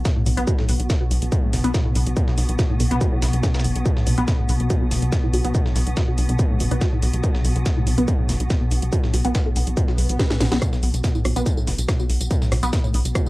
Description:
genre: driving peak-time techno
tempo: 142 BPM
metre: 4/4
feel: straight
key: unclear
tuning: A4 = 440 Hz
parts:
  - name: tight sequencer bass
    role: bass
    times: 0.0-13.1 s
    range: F#1 to B1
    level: -23 LUFS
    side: equal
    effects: sidechain pumping
  - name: swarming drone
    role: drone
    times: 0.0-13.3 s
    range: B2 to B3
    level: -27 LUFS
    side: equal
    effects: built-in reverb, sidechain pumping, cassette tape
  - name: resonant blip pluck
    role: riff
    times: 0.1-13.3 s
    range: A2 to B3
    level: -26 LUFS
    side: equal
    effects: phaser, analog chorus, sidechain pumping, cassette tape, analog delay
  - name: electronic kick drum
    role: drums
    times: 0.1-13.2 s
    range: none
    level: -21 LUFS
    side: equal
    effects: distortion
  - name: electronic snare drum and shaker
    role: drums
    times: 0.1-13.3 s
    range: none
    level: -34 LUFS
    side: equal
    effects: high-pass filter on perc, high-pass filter on snare
  - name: techno drum kit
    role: drums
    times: 0.1-13.3 s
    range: hi-hat, rim click, snare drum, tambourine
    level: -29 LUFS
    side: equal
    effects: sidechain pumping on hats, sidechain pumping on cymbals, sidechain pumping on perc
  - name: swell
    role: sound effects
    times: 9.9-10.6 s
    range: none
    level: -34 LUFS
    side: right 2 dB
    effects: none
room: light reverb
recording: home recording on cassette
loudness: -18 LUFS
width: side -20 dB against mid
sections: 0.0-13.3 A section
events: filter sweep on synth arpeggio sound 0.0-13.3; swell 9.9-10.6; drum fill 10.2-10.6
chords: 0.0 B5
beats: 0.05 | 0.48 0.90 1.32 1.74 | 2.17 2.59 3.01 3.43 | 3.86 4.28 4.70 5.12 | 5.55 5.97 6.39 6.81 | 7.24 7.66 8.08 8.50 | 8.93 9.35 9.77 10.19 | 10.62 11.04 11.46 11.88 | 12.31 12.73 13.15

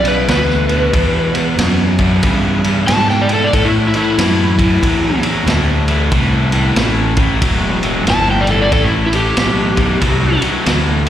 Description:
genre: blues rock power trio and southern rock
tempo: 92 BPM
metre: 4/4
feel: swing 62% on 8ths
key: unclear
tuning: A4 = 440 Hz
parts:
  - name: overdriven slide guitar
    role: melody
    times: 0.0-10.4 s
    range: E4 to A5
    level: -17 LUFS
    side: left 1 dB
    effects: slapback echo
  - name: distorted electric guitar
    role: riff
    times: 0.0-11.1 s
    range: E2 to F#3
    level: -17 LUFS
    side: equal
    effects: distortion, slapback echo
  - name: fuzz fingered electric bass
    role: bass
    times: 0.0-11.1 s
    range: E1 to A2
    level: -16 LUFS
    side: equal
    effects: overdrive
  - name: vintage drum kit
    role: drums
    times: 0.0-11.1 s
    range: kick drum, ride cymbal, snare drum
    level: -18 LUFS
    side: equal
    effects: none
room: studio reverb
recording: live gig heard through the venue's PA, recital hall reverb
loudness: -12 LUFS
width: side -11 dB against mid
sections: 0.0-11.1 A section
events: electric slide guitar solo 0.0-11.1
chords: 0.0 Em7; 3.5 Am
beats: 0.28 | 0.93 1.58 2.23 2.88 | 3.52 4.17 4.82 5.47 | 6.12 6.77 7.42 8.06 | 8.71 9.36 10.01 10.66

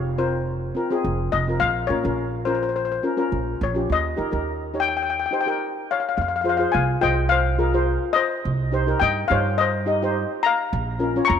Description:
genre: calypso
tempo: 106 BPM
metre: 4/4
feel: straight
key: unclear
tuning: A4 = 440 Hz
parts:
  - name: steel pan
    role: melody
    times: 0.0-11.4 s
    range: C5 to Db6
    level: -23 LUFS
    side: left 7 dB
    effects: none
  - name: steel pan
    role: accompaniment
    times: 0.0-11.4 s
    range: C4 to Eb5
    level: -25 LUFS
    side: left 1 dB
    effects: none
  - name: upright bass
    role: bass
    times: 0.0-11.4 s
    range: F1 to Eb3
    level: -25 LUFS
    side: right 3 dB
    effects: none
room: moderate plate reverb, RT60 3.0 s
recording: none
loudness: -20 LUFS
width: side -8 dB against mid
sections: 0.0-6.2 A section; 6.2-11.4 B section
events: stop 5.6-6.2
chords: 0.0 Fm; 1.6 Bbm; 3.9 Eb; 6.2 Fm; 8.4 Cm; 10.7 Bbm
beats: 0.49 1.06 | 1.62 2.19 2.76 3.33 | 3.90 4.47 5.04 5.60 | 6.17 6.74 7.31 7.88 | 8.45 9.02 9.59 10.15 | 10.72 11.29

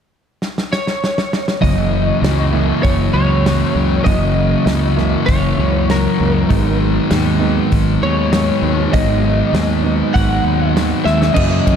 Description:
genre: rock, shoegaze and dream pop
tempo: 98 BPM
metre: 4/4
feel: straight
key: F# mixolydian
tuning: A4 = 440 Hz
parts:
  - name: loose indie drum kit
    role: drums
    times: 0.4-11.8 s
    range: crash cymbal, hi-hat, kick drum, ride cymbal, snare drum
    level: -19 LUFS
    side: equal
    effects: none
  - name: lightly driven lead guitar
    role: melody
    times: 0.7-11.8 s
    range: A#4 to F#5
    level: -21 LUFS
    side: equal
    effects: analog chorus, analog delay
  - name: mellow electric guitar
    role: riff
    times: 1.6-11.8 s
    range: F#2 to E4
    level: -19 LUFS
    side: right 9 dB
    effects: reverse reverb
  - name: thick fuzz guitar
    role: riff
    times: 1.6-11.8 s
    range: F#2 to G#3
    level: -18 LUFS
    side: left 7 dB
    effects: distortion, analog chorus
  - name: growling fingered electric bass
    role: bass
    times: 1.6-11.8 s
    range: F#1 to F#2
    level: -18 LUFS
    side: equal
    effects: overdrive
room: moderate lush hall reverb, RT60 2.2 s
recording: dreamy mix soaked in reverb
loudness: -13 LUFS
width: side -8 dB against mid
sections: 0.0-1.6 A section; 1.6-11.4 B section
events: drum fill 0.4-1.6, 11.1-11.4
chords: 0.0 N.C.; 1.6 F#7; 6.5 G#m7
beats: 0.40 1.01 | 1.62 2.23 2.85 3.45 | 4.06 4.67 5.28 5.89 | 6.50 7.11 7.72 8.33 | 8.93 9.54 10.15 10.75 | 11.36

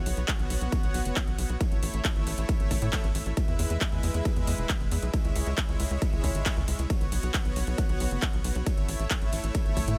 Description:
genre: uplifting trance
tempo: 136 BPM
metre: 4/4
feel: straight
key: unclear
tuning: A4 = 440 Hz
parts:
  - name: tight sequencer bass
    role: bass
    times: 0.0-10.0 s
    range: E1 to A2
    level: -32 LUFS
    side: equal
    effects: sidechain pumping
  - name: supersaw pad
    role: sustained chords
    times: 0.1-10.0 s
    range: G#3 to F#5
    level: -37 LUFS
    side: equal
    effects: sidechain pumping
  - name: big-room dance drum kit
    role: drums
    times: 0.1-10.0 s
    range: handclaps, hi-hat, ride cymbal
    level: -37 LUFS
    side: equal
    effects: none
  - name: electronic kick drum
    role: drums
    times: 0.3-9.9 s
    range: none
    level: -31 LUFS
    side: equal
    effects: none
room: digital ambience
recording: none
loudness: -28 LUFS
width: mono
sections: 0.0-10.0 A section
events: none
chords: 0.0 Bsus2; 1.6 A; 3.4 E; 5.1 C#m; 6.9 Bsus2; 8.7 A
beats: 0.28 0.72 1.17 | 1.61 2.05 2.49 2.93 | 3.37 3.81 4.25 4.69 | 5.13 5.58 6.02 6.46 | 6.90 7.34 7.78 8.22 | 8.66 9.11 9.55

